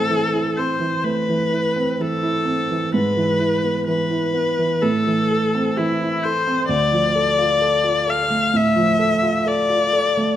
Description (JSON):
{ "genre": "classical, romantic duo for viola and grand piano", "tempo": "64 BPM", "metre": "4/4", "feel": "rubato", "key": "A minor", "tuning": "A4 = 439 Hz", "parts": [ { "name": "clear viola", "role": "melody", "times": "0.0-10.4 s", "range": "E4 to F5", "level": "-19 LUFS", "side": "left 3 dB", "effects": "none" }, { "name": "warm grand piano", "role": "accompaniment", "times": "0.0-10.4 s", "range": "D2 to A4", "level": "-21 LUFS", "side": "right 2 dB", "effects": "none" } ], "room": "moderate recital hall reverb, RT60 1.3 s", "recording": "none", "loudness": "-17 LUFS", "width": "side -11 dB against mid", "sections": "0.0-10.4 A section", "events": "none", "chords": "0.0 Am; 2.9 E/G#; 4.8 Am; 6.7 Dm", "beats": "0.10 1.05 2.01 | 2.95 3.87 4.82 5.77 | 6.69 7.62 8.55 9.48" }